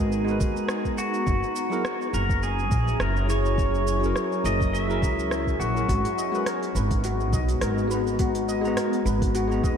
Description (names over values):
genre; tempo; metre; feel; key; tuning
sunset chillout; 104 BPM; 4/4; swing 55% on 16ths; G# minor; A4 = 441 Hz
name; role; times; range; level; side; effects
pedal steel guitar; melody; 0.0-6.7 s; F#4 to E5; -30 LUFS; left 1 dB; diffuse ambient delay
bell-like tine electric piano; accompaniment; 0.0-9.8 s; F#3 to A#5; -30 LUFS; moving between left 5 dB and right 1 dB; auto-pan, analog delay
shimmering ambient pad; sustained chords; 0.0-9.8 s; F#3 to A#5; -30 LUFS; equal; chorus, built-in reverb, phaser, vintage 12-bit sampler grit
upright bass; bass; 0.0-9.8 s; F#1 to D#2; -26 LUFS; equal; none
smooth R&B drum kit; drums; 0.1-9.8 s; hi-hat, rim click, shaker; -35 LUFS; right 1 dB; none
electronic kick drum; drums; 0.4-9.8 s; none; -27 LUFS; equal; none
steel pan; arpeggios; 5.9-9.8 s; F#4 to D#5; -33 LUFS; left 2 dB; analog delay
room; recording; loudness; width
wet cathedral reverb, RT60 5.4 s; dreamy mix soaked in reverb; -22 LUFS; side -7 dB against mid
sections
0.0-9.8 A section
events
none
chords
0.0 G#m9; 1.3 F#9; 5.9 G#m9